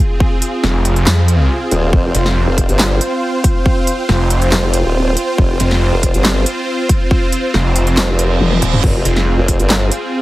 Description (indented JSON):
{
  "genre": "heavy wobble dubstep",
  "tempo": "139 BPM",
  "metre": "4/4",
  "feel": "half-time",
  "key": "F minor",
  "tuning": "A4 = 437 Hz",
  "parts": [
    { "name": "supersaw chords", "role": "sustained chords", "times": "0.0-10.2 s", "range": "C4 to C5", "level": "-18 LUFS", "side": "right 1 dB", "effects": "sidechain pumping" },
    { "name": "electronic kick drum", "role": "drums", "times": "0.2-9.6 s", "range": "none", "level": "-14 LUFS", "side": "equal", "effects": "overdrive" },
    { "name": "big-room dance drum kit", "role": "drums", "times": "0.4-10.0 s", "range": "crash cymbal, handclaps, hi-hat, snare drum, toms", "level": "-17 LUFS", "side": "equal", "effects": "none" },
    { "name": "snarling distorted saw bass", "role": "bass", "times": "0.6-9.4 s", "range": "Eb1 to F2", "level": "-14 LUFS", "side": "equal", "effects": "distortion, overdrive" },
    { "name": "formant-sweep wobble bass", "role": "bass", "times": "1.7-9.9 s", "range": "Eb1 to G1", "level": "-15 LUFS", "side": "equal", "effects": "chorus, overdrive" },
    { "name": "reverse cymbal", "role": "sound effects", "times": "8.2-8.8 s", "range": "none", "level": "-23 LUFS", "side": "right 6 dB", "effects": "none" }
  ],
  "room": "little or no reverb",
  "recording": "heavily compressed radio sound",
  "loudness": "-12 LUFS",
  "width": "side -17 dB against mid",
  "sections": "0.0-10.2 A section",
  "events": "reverse cymbal 8.2-8.8; drum fill 8.4-8.8",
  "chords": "0.0 Fm",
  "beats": "| 0.20 0.64 1.07 1.50 | 1.93 2.36 2.79 3.23 | 3.66 4.09 4.52 4.95 | 5.38 5.82 6.25 6.68 | 7.11 7.54 7.97 8.40 | 8.84 9.27 9.70 10.13"
}